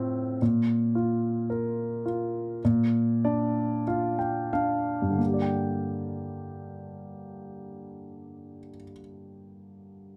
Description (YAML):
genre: folk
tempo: 42-59 BPM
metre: 4/4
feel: straight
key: G minor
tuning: A4 = 439 Hz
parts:
  - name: warm grand piano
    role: solo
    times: 0.0-10.2 s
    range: G2 to G5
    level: -29 LUFS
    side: equal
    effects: none
room: little or no reverb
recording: close, detailed microphones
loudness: -27 LUFS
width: mono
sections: 0.0-5.2 A section; 5.2-10.2 B section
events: slowing down 0.0-5.2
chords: 0.4 Bb5; 2.6 Bb6; 5.2 Gm